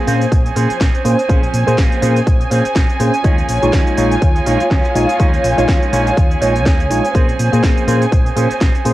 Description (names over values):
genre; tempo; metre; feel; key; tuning
filtered disco house; 123 BPM; 4/4; swing 57% on 16ths; Bb minor; A4 = 440 Hz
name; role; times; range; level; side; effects
tine electric piano; accompaniment; 0.0-8.9 s; Ab3 to Db5; -19 LUFS; equal; phaser, sidechain pumping, low-pass filter, cassette tape
dark studio violin section; sustained chords; 0.0-8.9 s; F4 to Ab5; -19 LUFS; equal; sidechain pumping, low-pass filter, cassette tape
electric guitar with an envelope filter; riff; 0.0-8.9 s; F3 to Ab4; -24 LUFS; right 9 dB; sidechain pumping, low-pass filter, cassette tape
fingered electric bass; bass; 0.1-8.9 s; Bb1 to Bb2; -18 LUFS; equal; sidechain pumping, low-pass filter
house drum kit; drums; 0.1-8.9 s; cabasa, hi-hat, snare drum; -25 LUFS; equal; sidechain pumping on hats, small room ambience, cassette tape, sidechain pumping on cymbals, sidechain pumping on perc
electronic kick drum; drums; 0.3-8.7 s; none; -14 LUFS; equal; small room ambience, cassette tape
room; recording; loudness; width
light reverb, digital ambience; home recording on cassette; -12 LUFS; side -15 dB against mid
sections
0.0-8.9 A section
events
none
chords
0.0 Bbm9; 3.2 Eb9sus4; 7.1 Bbm9